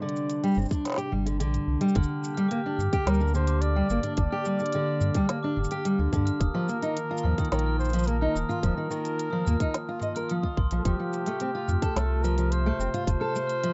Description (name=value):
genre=folktronica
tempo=108 BPM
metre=4/4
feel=straight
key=unclear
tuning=A4 = 441 Hz
part: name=mellow flugelhorn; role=melody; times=0.0-13.7 s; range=G4 to D5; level=-36 LUFS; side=equal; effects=delay
part: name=warbly tape-like pad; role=sustained chords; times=0.0-13.7 s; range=C3 to G4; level=-37 LUFS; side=equal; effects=chorus, built-in reverb
part: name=fingerpicked steel-string acoustic guitar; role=arpeggios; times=0.0-13.7 s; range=D3 to Eb5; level=-31 LUFS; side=equal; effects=delay
part: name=organic electronic drum kit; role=drums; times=0.1-13.7 s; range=hi-hat, shaker, snare drum, toms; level=-38 LUFS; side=equal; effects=none
part: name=warm sub bass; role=bass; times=0.6-13.2 s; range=Eb1 to G2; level=-29 LUFS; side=equal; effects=tube saturation
part: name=electronic kick drum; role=drums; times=0.7-13.2 s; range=none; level=-30 LUFS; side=equal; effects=none
part: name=glockenspiel with soft plastic mallets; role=second line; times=2.0-13.7 s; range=A5 to F6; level=-40 LUFS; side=equal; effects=tape echo
room=light reverb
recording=rough home demo mix, nothing above 7.8 kHz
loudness=-27 LUFS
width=mono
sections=0.0-2.0 A section; 2.0-13.7 B section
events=kick drops out 1.4-2.0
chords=0.0 Csus2; 2.0 Gm; 6.4 Ebsus2; 10.9 F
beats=0.30 0.85 1.41 | 1.97 2.52 3.08 3.63 | 4.19 4.74 5.30 5.86 | 6.41 6.97 7.52 8.08 | 8.63 9.19 9.74 10.30 | 10.86 11.41 11.97 12.52 | 13.08 13.63